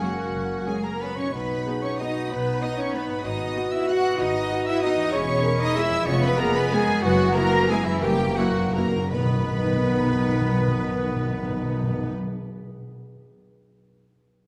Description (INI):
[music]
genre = classical, orchestral ballroom waltz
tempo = 154-207 BPM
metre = 3/4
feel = rubato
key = B major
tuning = A4 = 440 Hz
[part]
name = rich studio violin section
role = melody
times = 0.0-12.1 s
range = E5 to F#6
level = -36 LUFS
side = equal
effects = none
[part]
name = bright clarinet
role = second line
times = 0.0-12.1 s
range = A#3 to F#4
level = -37 LUFS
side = equal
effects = none
[part]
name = flute section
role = second line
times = 0.0-12.1 s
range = E4 to F#5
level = -35 LUFS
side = equal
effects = none
[part]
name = mellow cor anglais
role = second line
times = 0.0-12.1 s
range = E4 to F#5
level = -34 LUFS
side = equal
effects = none
[part]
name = rich studio violin section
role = second line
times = 0.0-12.1 s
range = E4 to F#5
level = -35 LUFS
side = equal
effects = none
[part]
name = mellow bassoon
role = accompaniment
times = 0.0-12.1 s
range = D#3 to B3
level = -36 LUFS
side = equal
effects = none
[part]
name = warm studio viola section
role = accompaniment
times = 0.0-12.1 s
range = G#3 to G#4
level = -35 LUFS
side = equal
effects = none
[part]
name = warm French horn section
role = sustained chords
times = 0.0-12.1 s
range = B3 to B4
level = -32 LUFS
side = equal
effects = none
[part]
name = concert harp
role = arpeggios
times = 0.0-13.0 s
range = E2 to D#5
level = -36 LUFS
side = equal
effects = none
[part]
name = rich symphonic cello section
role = bass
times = 0.0-12.1 s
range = E3 to F#4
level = -32 LUFS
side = equal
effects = none
[part]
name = dark chamber double bass section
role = bass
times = 0.3-12.1 s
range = E1 to B1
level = -32 LUFS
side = equal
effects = none
[part]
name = timpani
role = percussion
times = 8.0-12.2 s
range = F#2 to B2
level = -29 LUFS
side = equal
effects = none
[sound]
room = wet concert hall reverb, RT60 2.2 s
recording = none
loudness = -23 LUFS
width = mono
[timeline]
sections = 0.0-9.1 A section; 9.1-11.4 B section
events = slowing down 6.6-9.1; timpani fill 8.0-9.1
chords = 0.0 F#; 1.3 B; 3.3 G#m7; 5.1 C#m/E; 6.1 C#7/E#; 7.0 F#7sus4; 8.0 F#7b9; 9.1 B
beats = 0.01 | 0.34 0.67 1.02 | 1.34 1.67 2.00 | 2.31 2.62 2.95 | 3.25 3.56 3.89 | 4.20 4.51 4.83 | 5.13 5.44 5.76 | 6.07 6.39 6.72 | 7.03 7.35 7.70 | 8.03 8.37 8.75 | 9.12 9.49 9.87 | 10.23 10.60 10.99